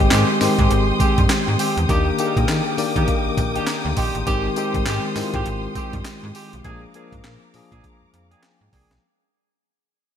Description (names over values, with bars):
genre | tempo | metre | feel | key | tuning
R&B, new jack swing | 101 BPM | 4/4 | swing 60% on 16ths | unclear | A4 = 440 Hz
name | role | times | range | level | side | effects
tine electric piano | accompaniment | 0.0-9.0 s | Eb3 to C6 | -23 LUFS | left 3 dB | medium tremolo
dark studio string section | sustained chords | 0.0-9.0 s | Ab3 to Eb6 | -27 LUFS | right 1 dB | none
slap-like FM bass | bass | 0.0-9.0 s | Ab1 to Eb3 | -23 LUFS | equal | none
dark horn section | stabs | 0.1-8.9 s | Ab3 to Ab4 | -28 LUFS | right 3 dB | digital delay
breakbeat sampler-style drum kit | drums | 0.1-9.0 s | handclaps, hi-hat, kick drum, snare drum, tambourine | -22 LUFS | equal | gated reverb
room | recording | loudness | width
moderate lush hall reverb, RT60 2.0 s | bright 1980s-style digital production | -18 LUFS | side -9 dB against mid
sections
0.0-9.0 A section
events
fade-out 0.0-9.0; tine electric piano fill 2.5-4.3, 7.8-9.0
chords
0.0 Abmaj7; 1.9 Ebmaj7; 4.3 Abmaj7; 6.6 Bb7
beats
0.11 0.70 1.30 | 1.89 2.48 3.08 3.67 | 4.27 4.86 5.46 6.05 | 6.64 7.24 7.83 8.43